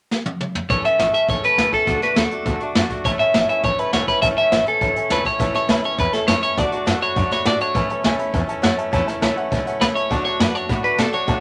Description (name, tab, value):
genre	rockabilly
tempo	204 BPM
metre	4/4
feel	straight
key	A major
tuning	A4 = 438 Hz
part	jazz brush drum kit	drums	0.1-11.3 s	hi-hat, kick drum, snare drum, toms	-25 LUFS	equal	none
part	electric guitar at the edge of break-up	melody	0.7-11.4 s	A4 to E5	-22 LUFS	equal	none
part	picked swing-style acoustic guitar	accompaniment	0.7-11.4 s	A2 to A4	-28 LUFS	equal	none
part	upright bass	bass	0.7-11.4 s	A1 to B2	-30 LUFS	equal	none
part	dark upright piano	accompaniment	3.0-11.4 s	C#5 to B5	-29 LUFS	equal	none
room	moderate club reverb, RT60 0.7 s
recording	none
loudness	-19 LUFS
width	mono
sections	0.7-5.4 A section; 5.4-11.4 B section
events	drum fill 0.1-0.7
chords	0.0 N.C.; 0.7 A; 1.9 D; 3.0 A; 6.6 D; 7.8 A; 10.1 D